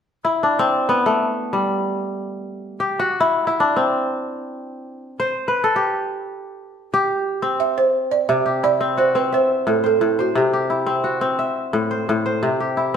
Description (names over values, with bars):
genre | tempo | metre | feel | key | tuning
west african traditional | free time | none | none | C lydian | A4 = 440 Hz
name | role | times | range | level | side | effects
kora | arpeggios | 0.2-13.0 s | A2 to E5 | -19 LUFS | left 2 dB | none
balafon | melody | 7.6-11.0 s | F#4 to E5 | -18 LUFS | right 4 dB | none
room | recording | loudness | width
wet stone room reverb, RT60 1.3 s | band playing live in one room | -18 LUFS | side -7 dB against mid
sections
0.0-8.3 A section; 8.3-13.0 B section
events
kora solo 0.0-8.3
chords
0.0 N.C.; 8.3 C; 9.3 Am; 10.4 C; 11.4 Am; 12.4 C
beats
free time